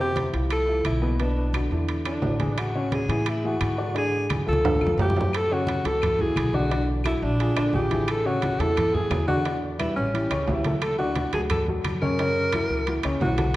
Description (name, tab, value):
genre	Afro-Cuban jazz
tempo	175 BPM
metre	4/4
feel	straight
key	F# minor from 5.3 s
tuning	A4 = 440 Hz
part	breathy alto saxophone	melody	0.0-13.6 s	C#4 to A#4	-26 LUFS	equal	none
part	warm upright piano	accompaniment	0.0-13.6 s	B2 to D5	-28 LUFS	left 1 dB	none
part	upright bass	bass	0.0-13.6 s	A1 to A2	-28 LUFS	equal	none
part	congas	percussion	0.0-13.6 s	none	-31 LUFS	equal	none
part	timbales	percussion	0.2-13.6 s	none	-33 LUFS	right 4 dB	none
part	claves	percussion	0.5-13.2 s	none	-42 LUFS	left 6 dB	none
room	wet recital hall reverb, RT60 1.7 s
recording	worn, warbling old tape, cassette tape, warbly pitch drift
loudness	-22 LUFS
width	side -16 dB against mid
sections	0.0-5.3 A section; 5.3-13.6 B section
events	drum fill 4.3-5.3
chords	0.0 Fmaj9; 1.2 Bm; 1.9 E7; 2.6 Amaj7; 4.0 Dmaj7#11; 4.6 C#aug; 5.3 F#m7; 6.7 Bm7; 7.4 A#6; 8.1 Amaj7; 9.5 Em7; 10.1 A6; 10.8 D; 12.2 F#7